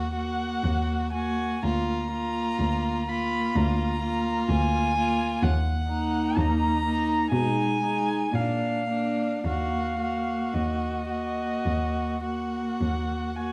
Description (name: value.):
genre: classical, slow romantic movement for string quartet.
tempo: 52-64 BPM.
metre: 4/4.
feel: rubato.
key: Eb minor.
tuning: A4 = 440 Hz.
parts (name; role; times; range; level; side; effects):
rich violin; melody; 0.0-13.5 s; Eb5 to Cb6; -33 LUFS; equal; none.
rich violin; second line; 0.0-13.5 s; D4 to Gb4; -33 LUFS; equal; none.
rich viola; accompaniment; 0.0-13.5 s; Ab3 to Bb3; -32 LUFS; equal; none.
rich cello; bass; 0.0-13.5 s; D2 to Cb3; -31 LUFS; equal; none.
room: moderate recital hall reverb, RT60 1.4 s.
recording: dark, warm production.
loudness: -27 LUFS.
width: mono.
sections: 0.0-13.5 A section.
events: none.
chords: 0.0 Ebm; 1.6 Bb/D; 5.4 Ebm; 7.3 Abm/Cb; 8.3 Bb; 9.4 Ebm.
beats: 0.64 | 1.63 2.61 3.56 4.50 | 5.44 6.37 7.33 8.34 | 9.45 10.55 11.67 12.81.